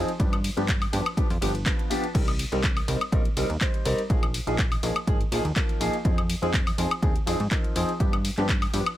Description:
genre	filtered disco house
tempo	123 BPM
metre	4/4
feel	straight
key	C minor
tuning	A4 = 440 Hz
part	warm concert grand piano	accompaniment	0.0-8.8 s	F3 to C5	-29 LUFS	equal	phaser, sidechain pumping
part	plucky analog bass	bass	0.0-8.8 s	G1 to Ab2	-29 LUFS	equal	sidechain pumping
part	house drum kit	drums	0.1-9.0 s	crash cymbal, handclaps, hi-hat, ride cymbal, woodblock	-30 LUFS	left 1 dB	none
part	electronic kick drum	drums	0.2-8.6 s	none	-25 LUFS	equal	none
room	little or no reverb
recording	none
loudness	-22 LUFS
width	side -13 dB against mid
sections	0.0-9.0 A section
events	none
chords	0.2 G7; 2.1 Cm7; 4.1 Bb7sus4; 6.1 Fm7; 8.0 G7

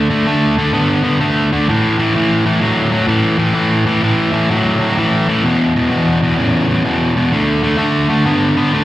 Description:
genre	blues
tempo	127 BPM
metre	4/4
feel	swing 66% on 8ths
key	A major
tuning	A4 = 441 Hz
part	cranked stack guitar	solo	0.0-8.8 s	E2 to B3	-12 LUFS	equal	overdrive, slapback echo
room	light reverb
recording	live gig heard through the venue's PA, recital hall reverb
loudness	-12 LUFS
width	side -14 dB against mid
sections	0.0-8.8 A section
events	none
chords	0.0 D5; 1.7 A5; 5.5 E5; 7.3 D5

